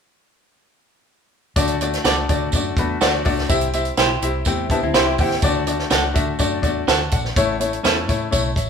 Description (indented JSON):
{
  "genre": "uptempo 1960s-style soul",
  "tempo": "124 BPM",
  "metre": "4/4",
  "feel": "straight",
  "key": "D major",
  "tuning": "A4 = 440 Hz",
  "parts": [
    { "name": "bright upright piano", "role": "accompaniment", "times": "1.6-8.7 s", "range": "A3 to A5", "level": "-21 LUFS", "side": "left 3 dB", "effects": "none" },
    { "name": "vintage muted fingered electric bass", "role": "bass", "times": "1.6-8.7 s", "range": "A1 to A2", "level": "-26 LUFS", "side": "equal", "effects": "none" },
    { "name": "compact cocktail drum kit", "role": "drums", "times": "1.6-8.7 s", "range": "hi-hat, kick drum, snare drum", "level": "-21 LUFS", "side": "right 1 dB", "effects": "none" },
    { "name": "tambourine", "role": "percussion", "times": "1.6-8.7 s", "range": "none", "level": "-31 LUFS", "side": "right 4 dB", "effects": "none" },
    { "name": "electric guitar at the edge of break-up", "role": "stabs", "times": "2.0-8.0 s", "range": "C#4 to D5", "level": "-24 LUFS", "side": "right 4 dB", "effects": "spring reverb" },
    { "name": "hollow-body jazz guitar", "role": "riff", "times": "4.5-5.4 s", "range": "A3 to G4", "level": "-26 LUFS", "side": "left 5 dB", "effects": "none" }
  ],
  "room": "moderate large studio reverb, RT60 1.0 s",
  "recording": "band playing live in one room",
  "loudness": "-17 LUFS",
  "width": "side -6 dB against mid",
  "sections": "1.6-8.7 A section",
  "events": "upright piano fill 4.5-5.4",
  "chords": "1.6 D; 3.5 C; 5.4 D; 7.4 A",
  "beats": "| 1.56 2.04 2.53 3.01 | 3.50 3.98 4.46 4.95 | 5.43 5.91 6.40 6.88 | 7.36 7.84 8.33"
}